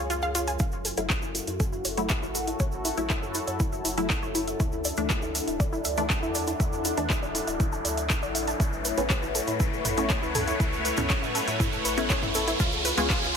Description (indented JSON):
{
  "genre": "melodic techno",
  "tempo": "120 BPM",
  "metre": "4/4",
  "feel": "straight",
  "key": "F# minor",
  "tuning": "A4 = 440 Hz",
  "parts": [
    { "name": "sweeping resonant pad", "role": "sustained chords", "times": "0.0-13.4 s", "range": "A3 to C#5", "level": "-32 LUFS", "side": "left 2 dB", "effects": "chorus, sidechain pumping" },
    { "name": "wide unison pluck", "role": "arpeggios", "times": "0.0-13.2 s", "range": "E4 to A5", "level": "-33 LUFS", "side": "right 1 dB", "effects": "sidechain pumping, dub echo" },
    { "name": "round analog bass", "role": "bass", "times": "0.0-13.4 s", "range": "D1 to A2", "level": "-37 LUFS", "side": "equal", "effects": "sidechain pumping" },
    { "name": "overtone-sweeping drone", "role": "drone", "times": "0.0-13.4 s", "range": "F#2", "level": "-40 LUFS", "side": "left 1 dB", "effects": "chorus, built-in reverb, sidechain pumping" },
    { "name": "deep house drum kit", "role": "drums", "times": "0.1-13.2 s", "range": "handclaps, hi-hat, toms", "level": "-31 LUFS", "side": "equal", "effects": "overdrive" },
    { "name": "cabasa", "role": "percussion", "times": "0.1-13.3 s", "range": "none", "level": "-36 LUFS", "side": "right 4 dB", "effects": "none" },
    { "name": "electronic kick drum", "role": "drums", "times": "0.6-13.2 s", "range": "none", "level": "-27 LUFS", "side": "equal", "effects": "overdrive" },
    { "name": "riser", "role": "sound effects", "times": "4.7-13.4 s", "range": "none", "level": "-33 LUFS", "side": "right 1 dB", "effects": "none" },
    { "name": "filtered dub chord stab", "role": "stabs", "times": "1.0-13.1 s", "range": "E3 to E4", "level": "-33 LUFS", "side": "left 1 dB", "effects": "phaser, sidechain pumping, dub echo" }
  ],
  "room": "light reverb, digital ambience",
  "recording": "none",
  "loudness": "-24 LUFS",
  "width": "side -6 dB against mid",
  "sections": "0.6-13.4 A section",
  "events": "build-up 0.6-13.4; filter sweep on synth pluck 0.6-13.4; riser 4.7-13.4",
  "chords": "0.0 C#; 0.6 F#m7; 4.6 Dsus2; 8.6 Aadd9; 12.6 C#",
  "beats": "0.10 | 0.60 1.10 1.60 2.10 | 2.60 3.10 3.60 4.10 | 4.60 5.10 5.60 6.10 | 6.60 7.10 7.60 8.10 | 8.60 9.10 9.60 10.10 | 10.60 11.10 11.60 12.10 | 12.60 13.10"
}